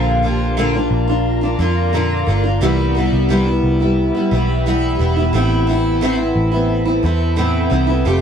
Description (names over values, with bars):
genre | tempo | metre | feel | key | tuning
pop | 88 BPM | 4/4 | straight | unclear | A4 = 438 Hz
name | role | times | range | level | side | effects
picked steel-string acoustic guitar | accompaniment | 0.0-8.2 s | A2 to G4 | -17 LUFS | equal | double-tracked left and right
granular cloud pad | sustained chords | 0.0-8.2 s | F4 to B5 | -26 LUFS | right 1 dB | built-in reverb
vintage muted picked electric bass | bass | 0.0-8.2 s | E1 to F2 | -18 LUFS | equal | none
room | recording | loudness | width
little or no reverb | dry, close 1970s-style studio recording | -14 LUFS | side -8 dB against mid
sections
0.0-8.2 A section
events
none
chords
0.0 Bb; 2.6 Cmaj7; 5.3 Amadd9